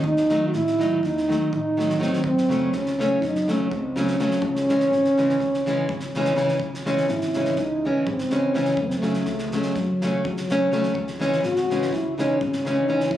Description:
balkan folk, Balkan wedding band; 248 BPM (eighths); 9/8; straight; C# harmonic minor; A4 = 438 Hz
trombone with bucket mute; melody; 0.0-13.2 s; F#3 to F#4; -23 LUFS; equal; tape echo
upright bass; bass; 0.0-13.2 s; G#1 to A2; -32 LUFS; equal
loose indie drum kit; percussion; 0.0-13.2 s; kick drum, snare drum; -35 LUFS; right 2 dB
nylon-string guitar; accompaniment; 0.3-13.1 s; C#3 to D#4; -24 LUFS; equal
moderate scoring stage reverb, RT60 2.0 s; recorded on a phone in the room, club reverb; -20 LUFS; side -12 dB against mid
0.0-6.6 A section; 6.6-13.2 B section
trombone solo 6.6-13.2
0.0 D#dim; 2.2 F#m; 4.4 C#m; 8.8 F#m; 10.9 C#m

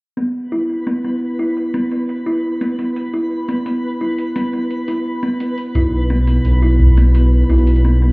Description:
IDM; 86 BPM; 4/4; straight; A4 = 441 Hz
kalimba; arpeggios; 0.2-8.1 s; B3 to E4; -18 LUFS; equal; low-pass filter, digital delay
electronic hi-hat; drums; 0.2-7.8 s; -45 LUFS; equal; low-pass filter on hats
twinkling granular texture; texture; 0.5-8.1 s; B4; -31 LUFS; equal; built-in reverb
dark detuned saw bass; bass; 5.8-8.1 s; B1; -12 LUFS; equal
electronic kick drum; drums; 5.8-6.9 s; -15 LUFS; equal
light reverb; heard muffled through a wall, club reverb, EQ; -14 LUFS; side -26 dB against mid
0.2-8.1 A section
filter sweep on drum 0.2-8.1
0.2 E5/B

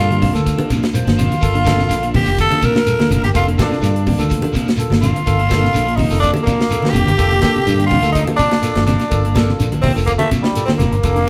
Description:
afrobeat; 125 BPM; 4/4; straight; G minor; A4 = 442 Hz
raspy tenor saxophone; melody; 0.0-11.3 s; G3 to Bb4; -22 LUFS; equal
brilliant trombone; second line; 0.0-11.3 s; G3 to Bb4; -27 LUFS; equal
barky tine electric piano; accompaniment; 0.0-11.3 s; Bb3 to C5; -28 LUFS; equal
semi-hollow electric guitar; arpeggios; 0.0-11.3 s; C3 to D3; -28 LUFS; equal
fingered electric bass; bass; 0.0-11.2 s; F1 to G2; -21 LUFS; equal
electric guitar at the edge of break-up; stabs; 0.1-11.3 s; F3 to D4; -26 LUFS; equal; spring reverb
tight funk drum kit; drums; 0.1-11.3 s; hi-hat, kick drum, snare drum; -24 LUFS; equal
congas; percussion; 0.1-10.9 s; -25 LUFS; equal
shekere; percussion; 0.2-11.2 s; -28 LUFS; equal
wet stone room reverb, RT60 1.3 s; band playing live in one room; -16 LUFS; mono
0.0-11.3 A section
0.0 Gm7

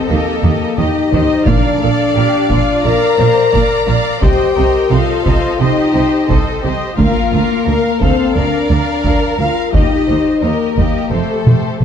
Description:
cinematic, epic orchestral film score; 87 BPM; 4/4; straight; Bb major; A4 = 439 Hz
rich symphonic violin section; melody; 0.0-11.8 s; A4 to Bb5; -23 LUFS; left 3 dB
warm symphonic violin section; second line; 0.0-11.8 s; F4 to D5; -22 LUFS; left 3 dB
warm symphonic viola section; accompaniment; 0.0-11.8 s; Bb3 to F5; -21 LUFS; right 1 dB
warm French horn section; sustained chords; 0.0-11.8 s; A3 to Bb4; -16 LUFS; left 4 dB
rich studio double bass section; bass; 0.1-11.8 s; F1 to Eb2; -19 LUFS; right 4 dB
rich symphonic cello section; bass; 0.1-11.8 s; D2 to Eb3; -20 LUFS; right 4 dB
taiko ensemble; drums; 0.4-11.8 s; -16 LUFS; equal
timpani; percussion; 1.5-2.5 s; Bb2; -22 LUFS; right 3 dB
moderate scoring stage reverb, RT60 1.6 s; dark, warm production; -11 LUFS; side -8 dB against mid
0.0-11.8 A section
drum fill 0.4-1.5, 11.5-11.8
0.0 Eb; 1.5 Bb; 4.2 Cm; 7.0 Bb/D; 9.7 Eb; 11.1 Fadd9

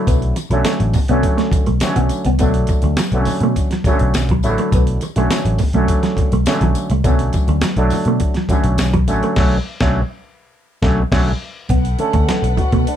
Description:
funk; 103 BPM; 4/4; straight; B minor; A4 = 442 Hz
mellow electric guitar; riff; 0.0-12.9 s; F#3 to B3; -22 LUFS; right 1 dB; phaser
overdriven clav; stabs; 0.0-13.0 s; C#3 to C#5; -20 LUFS; right 1 dB; auto-wah
vintage muted picked electric bass; bass; 0.1-12.8 s; A1 to B2; -18 LUFS; equal
breakbeat sampler-style drum kit; drums; 0.1-13.0 s; crash cymbal, hi-hat, kick drum, snare drum; -19 LUFS; equal
congas; percussion; 0.1-12.7 s; -26 LUFS; right 2 dB
tambourine; percussion; 0.1-9.2 s; -35 LUFS; left 11 dB
warm studio string section; sustained chords; 11.7-13.0 s; A4 to F#5; -26 LUFS; left 7 dB
light reverb; dark, warm production; -14 LUFS; side -10 dB against mid
0.0-11.7 A section; 11.7-13.0 B section
clav fill 1.5-2.4; band accent 9.4-11.7; clav solo 11.7-13.0
0.0 Bm9

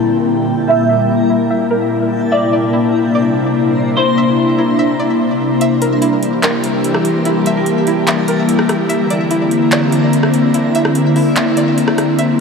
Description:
hip hop, atmospheric cloud-rap; 146 BPM; 4/4; half-time; G dorian; A4 = 441 Hz
ethereal airy pad; sustained chords; 0.0-12.4 s; Bb2 to G4; -13 LUFS; left 1 dB; ensemble chorus, built-in reverb, low-pass filter
string-like resonator pluck; arpeggios; 0.0-12.4 s; E4 to E5; -22 LUFS; equal; chorus, phaser, low-pass filter, ping-pong delay
backwards swelling texture; texture; 0.0-12.4 s; D4 to Bb5; -24 LUFS; equal; built-in reverb
semi-hollow electric guitar; melody; 0.7-5.2 s; C5 to E5; -20 LUFS; right 2 dB; analog chorus, low-pass filter, ping-pong delay
trap drum kit; drums; 5.6-12.3 s; handclaps, hi-hat, rim click; -21 LUFS; equal; overdrive
wet huge ambient reverb, RT60 8.0 s; dreamy mix soaked in reverb; -12 LUFS; side -5 dB against mid
0.0-5.6 A section; 5.6-12.4 B section
filter sweep 0.0-5.6; kick muted 5.6-12.2, 12.2
0.0 Gm69; 2.3 C9; 5.6 Gm69; 8.9 C9

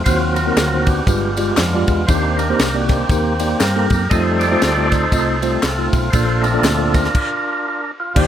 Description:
uptempo gospel; 118 BPM; 4/4; swing 59% on 8ths; Bb major; A4 = 440 Hz
percussive tonewheel organ; sustained chords; 0.0-8.3 s; Eb3 to Eb5; -19 LUFS; right 1 dB; slow rotary speaker, overdrive
hollow-body short-scale fingered electric bass; bass; 0.0-8.3 s; G1 to G2; -21 LUFS; equal
mellow tine electric piano; accompaniment; 0.1-8.3 s; G2 to Eb5; -20 LUFS; equal; medium stereo tremolo
tight funk drum kit; drums; 0.1-8.3 s; crash cymbal, kick drum, ride cymbal, snare drum; -20 LUFS; equal
tambourine and handclaps; percussion; 0.1-7.0 s; -28 LUFS; left 4 dB
light reverb; -14 LUFS; side -10 dB against mid
0.0-8.2 A section
tonewheel organ solo 0.0-8.2; stop 7.2-8.2
0.1 Ebm6; 1.1 G7b9; 2.1 Cm7; 4.1 F7; 6.1 Bbmaj7

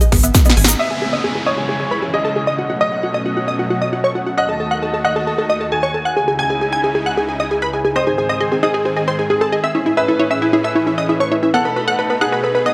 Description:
uplifting trance; 134 BPM; 4/4; straight; C# minor; A4 = 440 Hz
unison pluck; melody; 0.0-12.7 s; E4 to G#5; -21 LUFS; equal; sidechain pumping, tape echo
analog pluck; arpeggios; 0.0-0.7, 8.0-12.7 s; B3 to G#5; -26 LUFS; equal; chorus, sidechain pumping, tape echo
big-room dance drum kit; drums; 0.0-0.8 s; hi-hat, snare drum; -20 LUFS; equal; sidechain pumping on hats
egg shaker; percussion; 0.0-0.8 s; -23 LUFS; equal
tight sequencer bass; bass; 0.1-0.8 s; G#1; -18 LUFS; equal; sidechain pumping
clear grand piano; second line; 0.8-12.7 s; G#4 to G#5; -24 LUFS; equal; tape echo
plucky unison lead; second line; 0.8-12.7 s; E5 to G#6; -28 LUFS; equal; analog chorus, sidechain pumping, tape echo
supersaw pad; sustained chords; 0.8-12.7 s; C#2 to B4; -26 LUFS; equal; sidechain pumping
downlifter; sound effects; 0.8-4.4 s; -29 LUFS; equal
moderate digital room reverb, RT60 1.2 s; -17 LUFS; mono
0.8-12.7 A section
drum fill 0.3-0.8; band accent 0.6; filter sweep on synth pluck 0.8-12.7
0.0 G#m; 0.8 C#madd9; 2.6 B7; 4.4 D#dim; 6.2 C#madd9; 8.0 G#; 9.7 Amaj7; 11.5 B7

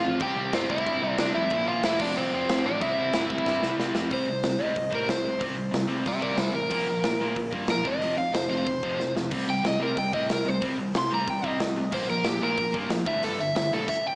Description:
punk rock; 184 BPM; 4/4; straight; C major; A4 = 441 Hz
overdriven semi-hollow guitar; melody; 0.0-14.2 s; C4 to C6; -27 LUFS; equal
distorted electric guitar; riff; 0.0-13.9 s; F2 to C4; -30 LUFS; equal; distortion, slapback echo
overdriven picked electric bass; bass; 0.0-13.9 s; E1 to A2; -37 LUFS; equal
big rock drum kit; drums; 0.2-14.0 s; crash cymbal, hi-hat, kick drum, snare drum; -30 LUFS; equal
moderate concert hall reverb, RT60 1.8 s, small room ambience; big arena sound, small speaker sound; -24 LUFS; side -26 dB against mid
0.0-4.1 A section; 4.1-14.2 B section
drum fill 3.5-4.1, 9.0-9.3; overdriven electric guitar solo 4.1-14.2
0.2 C; 1.5 Bb5; 2.0 F; 2.8 C; 4.1 C5; 6.7 Bb5; 7.9 F5; 9.3 C5; 11.9 Bb5; 13.1 G

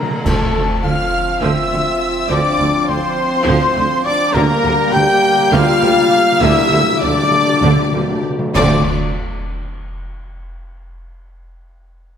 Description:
cinematic, epic orchestral film score; 203 BPM (eighths); 7/8; uneven beats; D minor; A4 = 440 Hz
dark symphonic violin section; melody; 0.0-8.9 s; A5 to G6; -21 LUFS; left 4 dB
warm symphonic violin section; second line; 0.0-8.9 s; A4 to G5; -24 LUFS; left 3 dB
dark French horn section; sustained chords; 0.0-8.8 s; A3 to G4; -20 LUFS; left 3 dB
mellow trumpet; stabs; 0.0-8.8 s; A4 to G5; -19 LUFS; equal
timpani; percussion; 0.0-0.2, 4.4-8.8 s; D3; -24 LUFS; equal
rich symphonic viola section; accompaniment; 0.3-8.9 s; D3 to G4; -25 LUFS; right 2 dB
mellow trombone section; sustained chords; 0.3-8.8 s; F3 to C4; -24 LUFS; right 3 dB
mellow tuba; bass; 0.3-8.8 s; D2; -24 LUFS; right 3 dB
rich studio double bass section; bass; 0.3-8.9 s; D2; -23 LUFS; right 3 dB
warm symphonic cello section; bass; 0.3-8.9 s; D3; -24 LUFS; right 2 dB
clash cymbals and concert bass drum; percussion; 0.3-1.4, 8.6-9.7 s; -24 LUFS; equal
wet scoring stage reverb, RT60 2.0 s; -12 LUFS; side -8 dB against mid
0.3-8.6 A section; 8.6-10.7 B section
break 0.0; timpani fill 0.0, 4.4-8.6; band accent 0.3-0.8, 8.6-9.2
0.3 Dm7; 4.4 Gm/D; 8.6 Dm7

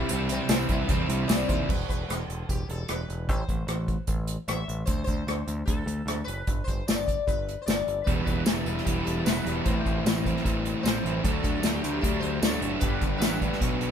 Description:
indie rock; 151 BPM; 4/4; straight; E minor; A4 = 440 Hz
sitar; melody; 0.0-13.9 s; B3 to E5; -35 LUFS; left 5 dB
sludgy distorted guitar; riff; 0.0-1.7, 8.1-13.9 s; E2 to G4; -32 LUFS; left 7 dB; overdrive
sludgy distorted guitar; riff; 0.0-1.7, 8.1-13.9 s; G2 to E4; -30 LUFS; right 6 dB; overdrive
growling picked electric bass; bass; 0.0-13.9 s; E1 to E2; -31 LUFS; equal; overdrive
unplugged drum kit; drums; 0.1-13.9 s; crash cymbal, hi-hat, kick drum, rim click, snare drum, tambourine; -28 LUFS; equal
light reverb; band playing live in one room; -25 LUFS; side -8 dB against mid
0.0-1.7 A section; 1.7-13.9 B section
0.0 C; 1.7 E5; 3.3 Am; 4.9 D5; 6.5 G5; 8.1 Em; 9.7 Am; 11.2 D5; 12.8 G

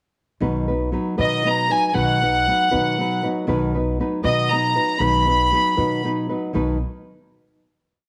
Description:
mexican folk, mariachi; 78 BPM (dotted quarters); 6/8; straight; B major; A4 = 440 Hz
nylon-string guitar; accompaniment; 0.4-6.8 s; B2 to B4; -25 LUFS; equal
upright bass; bass; 0.4-6.8 s; B1 to B2; -29 LUFS; equal
clear chamber violin section; melody; 1.2-6.1 s; D#5 to B5; -22 LUFS; equal
wet echo chamber reverb, RT60 1.3 s, small room ambience; -20 LUFS; mono
0.4-6.6 A section; 6.6-8.1 final chord
0.4 B

